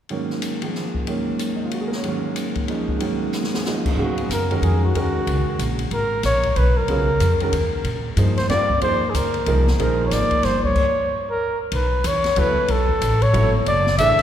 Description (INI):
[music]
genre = modal jazz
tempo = 186 BPM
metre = 3/4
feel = swing 62% on 8ths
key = unclear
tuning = A4 = 440 Hz
[part]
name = clear grand piano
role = accompaniment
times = 0.1-14.2 s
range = G#2 to E#5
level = -25 LUFS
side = right 1 dB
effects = none
[part]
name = open jazz drum kit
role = drums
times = 0.1-14.2 s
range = crash cymbal, hi-hat, kick drum, ride cymbal, snare drum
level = -28 LUFS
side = left 2 dB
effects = none
[part]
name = breathy trumpet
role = melody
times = 4.0-14.2 s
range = F#4 to E5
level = -21 LUFS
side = equal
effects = none
[part]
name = upright bass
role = bass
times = 4.0-14.2 s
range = F#1 to A#2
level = -21 LUFS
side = equal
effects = none
[sound]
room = wet church reverb, RT60 2.7 s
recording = recorded in a church or concert hall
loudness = -18 LUFS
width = side -10 dB against mid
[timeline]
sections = 0.1-4.0 A section; 4.0-11.7 B section; 11.7-14.2 C section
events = drum fill 3.3-3.7; stop 10.8-11.7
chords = 0.1 G#9sus4; 7.8 A#9sus4; 10.8 N.C.; 11.7 Bm9